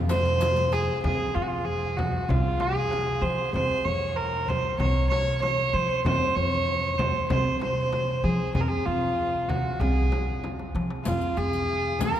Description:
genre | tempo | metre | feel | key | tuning
Turkish makam ensemble | 96 BPM | 4/4 | straight | F makam kurdi | A4 = 438 Hz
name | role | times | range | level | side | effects
upright bass | bass | 0.0-12.2 s | C2 to F3 | -28 LUFS | equal | none
rich cello | drone | 0.0-1.1 s | none | barely audible | none | none
clear kamancheh | melody | 0.1-12.2 s | F4 to Db5 | -26 LUFS | right 1 dB | none
darbuka | percussion | 0.1-12.2 s | none | -33 LUFS | equal | none
frame drum | percussion | 0.1-12.1 s | none | -33 LUFS | left 2 dB | none
riq | percussion | 0.1-0.8, 11.1-12.2 s | none | -38 LUFS | left 6 dB | none
room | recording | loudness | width
wet cathedral reverb, RT60 6.6 s | recorded in a church or concert hall | -23 LUFS | side -10 dB against mid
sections
0.0-1.0 A section; 1.0-12.2 B section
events
drum fill 10.4-11.1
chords
none

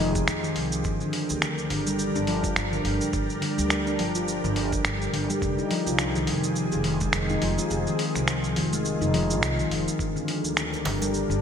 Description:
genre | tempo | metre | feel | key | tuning
organic downtempo | 105 BPM | 4/4 | swing 57% on 16ths | F dorian | A4 = 443 Hz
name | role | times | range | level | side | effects
ethereal airy pad | sustained chords | 0.0-11.4 s | F3 to Bb4 | -31 LUFS | equal | ensemble chorus, built-in reverb, sidechain pumping
handpan | arpeggios | 0.0-11.4 s | D3 to F4 | -27 LUFS | left 1 dB | low-pass filter, digital delay
upright bass | bass | 0.0-11.4 s | F1 to F2 | -31 LUFS | right 1 dB | sidechain pumping
dusty soul sampler-style drum kit | drums | 0.2-11.4 s | finger snaps, hi-hat, shaker | -30 LUFS | right 1 dB | none
electronic kick drum | drums | 0.2-10.1 s | none | -31 LUFS | right 1 dB | none
djembe | percussion | 10.7-11.1 s | none | -36 LUFS | right 5 dB | none
room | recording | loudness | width
moderate lush hall reverb, RT60 2.1 s | bright 1980s-style digital production | -23 LUFS | side -8 dB against mid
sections
0.0-11.4 A section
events
kick drops out 7.7-10.0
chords
0.0 Fm7; 0.9 Gm7; 5.4 Fm7; 10.0 Gm

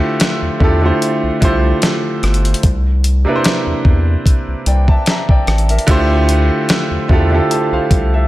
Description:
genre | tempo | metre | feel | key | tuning
contemporary R&B | 74 BPM | 4/4 | swing 54% on 16ths | D minor | A4 = 440 Hz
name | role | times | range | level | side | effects
clear concert grand piano | accompaniment | 0.0-8.3 s | C3 to Bb5 | -16 LUFS | right 1 dB | none
dusty soul sampler-style drum kit | drums | 0.2-8.1 s | hi-hat, kick drum, rim click, snare drum | -15 LUFS | equal | none
round analog bass | bass | 0.4-8.3 s | G1 to E2 | -14 LUFS | equal | none
room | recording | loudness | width
moderate plate reverb, RT60 1.8 s, digital ambience | dreamy mix soaked in reverb | -12 LUFS | side -16 dB against mid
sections
0.0-8.3 A section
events
none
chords
0.0 Dm11; 2.6 C7; 5.9 Dm11

